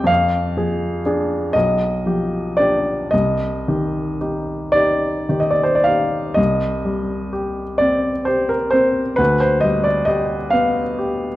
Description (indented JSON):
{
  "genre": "classical, romantic nocturne for solo piano",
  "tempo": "35-46 BPM (dotted quarters)",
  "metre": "12/8",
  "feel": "rubato",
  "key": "C minor",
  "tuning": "A4 = 440 Hz",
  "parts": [
    { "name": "warm baby grand piano", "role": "solo", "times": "0.0-11.4 s", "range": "B1 to Ab5", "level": "-16 LUFS", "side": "equal", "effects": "none" }
  ],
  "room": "wet recital hall reverb, RT60 1.5 s",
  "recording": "none",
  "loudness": "-16 LUFS",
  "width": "side -16 dB against mid",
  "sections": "0.0-6.4 A section; 6.4-11.4 A section",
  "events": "none",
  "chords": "0.1 Ddim/F; 1.5 G7/B; 3.1 Cm; 9.2 G7/D"
}